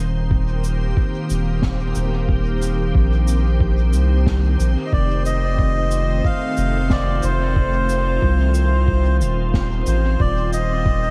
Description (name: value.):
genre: ambient dub.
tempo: 91 BPM.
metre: 4/4.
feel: swing 58% on 16ths.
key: F mixolydian.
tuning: A4 = 441 Hz.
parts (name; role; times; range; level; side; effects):
soft additive organ-like pad; sustained chords; 0.0-11.1 s; Eb3 to C5; -28 LUFS; equal; ensemble chorus, built-in reverb.
soft dub sub bass; bass; 0.0-11.1 s; Eb1 to C2; -21 LUFS; equal; none.
electronic kick drum; drums; 0.3-11.0 s; none; -22 LUFS; equal; none.
cabasa and snare drum; drums; 0.6-10.7 s; none; -32 LUFS; equal; dub echo.
melodica; melody; 4.9-11.1 s; C5 to F5; -26 LUFS; equal; dub echo.
drifting glass-harmonics texture; texture; 5.6-11.1 s; F4; -36 LUFS; equal; chorus, built-in reverb.
room: light reverb, small room ambience.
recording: vinyl crackle.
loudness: -19 LUFS.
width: mono.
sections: 0.0-11.1 A section.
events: none.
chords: 0.0 Eb6; 4.9 F7; 10.2 Eb5.